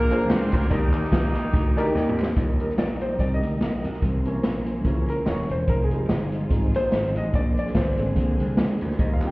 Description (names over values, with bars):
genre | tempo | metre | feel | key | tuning
uptempo gospel | 145 BPM | 4/4 | swing 57% on 8ths | Eb major | A4 = 439 Hz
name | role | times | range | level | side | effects
clear horn section | melody | 0.0-2.2 s | Eb3 to C5 | -30 LUFS | equal | plate reverb
clear concert grand piano | accompaniment | 0.0-9.3 s | Bb2 to Bb5 | -28 LUFS | equal | none
tonewheel organ | sustained chords | 0.0-9.3 s | E3 to D6 | -33 LUFS | right 2 dB | slow rotary speaker, chorus vibrato
slap bass | bass | 0.0-9.3 s | Eb1 to Eb2 | -25 LUFS | equal | none
swinging big-band drum kit | drums | 0.1-9.3 s | hi-hat, kick drum, snare drum, toms | -24 LUFS | equal | none
group handclap | percussion | 0.1-2.3, 9.2-9.3 s | none | -40 LUFS | right 1 dB | none
warm studio string section | sustained chords | 2.4-9.3 s | C3 to Ab4 | -38 LUFS | left 1 dB | none
room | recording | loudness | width
light reverb | heard muffled through a wall, stone room reverb, EQ | -21 LUFS | side -22 dB against mid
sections
0.0-2.4 A section; 2.4-9.3 B section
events
grand piano fill 1.5-2.4; drum fill 1.9-2.4; grand piano solo 2.4-9.3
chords
0.0 Bb7; 0.7 Ebmaj7; 4.0 C7b9; 5.7 Fm7; 7.3 Bb9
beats
0.29 | 0.71 1.12 1.53 1.95 | 2.36 2.78 3.19 3.61 | 4.02 4.44 4.85 5.27 | 5.68 6.10 6.51 6.92 | 7.34 7.75 8.16 8.58 | 8.99